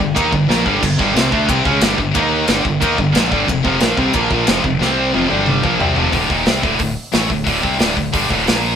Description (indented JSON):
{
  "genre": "heavy metal",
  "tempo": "181 BPM",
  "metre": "4/4",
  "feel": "straight",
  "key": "D minor",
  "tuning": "A4 = 441 Hz",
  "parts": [
    { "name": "distorted electric guitar", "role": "riff", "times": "0.0-8.8 s", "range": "D2 to Eb4", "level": "-20 LUFS", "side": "right 7 dB", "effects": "overdrive" },
    { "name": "fuzz guitar", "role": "riff", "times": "0.0-6.1 s", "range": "F2 to Eb4", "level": "-20 LUFS", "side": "equal", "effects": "distortion" },
    { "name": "high-gain distorted guitar", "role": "riff", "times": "0.0-8.8 s", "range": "D2 to Eb4", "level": "-19 LUFS", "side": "left 7 dB", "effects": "distortion" },
    { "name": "growling fingered electric bass", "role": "bass", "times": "0.0-8.8 s", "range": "D1 to Eb2", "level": "-25 LUFS", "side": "equal", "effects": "overdrive" },
    { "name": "modern studio drum kit", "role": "drums", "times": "0.2-8.6 s", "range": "crash cymbal, hi-hat, kick drum, ride cymbal, snare drum, toms", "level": "-19 LUFS", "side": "equal", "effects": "none" }
  ],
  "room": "moderate studio reverb, RT60 0.7 s",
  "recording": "band playing live in one room",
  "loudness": "-13 LUFS",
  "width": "side -8 dB against mid",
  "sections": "0.0-6.1 A section; 6.1-8.8 B section",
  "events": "drum fill 0.5-0.8, 4.8-6.1",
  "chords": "0.0 G5; 2.2 Eb5; 2.5 G5; 3.5 F5; 4.8 C5; 5.1 F5; 5.3 G5; 5.6 F5; 6.1 D5"
}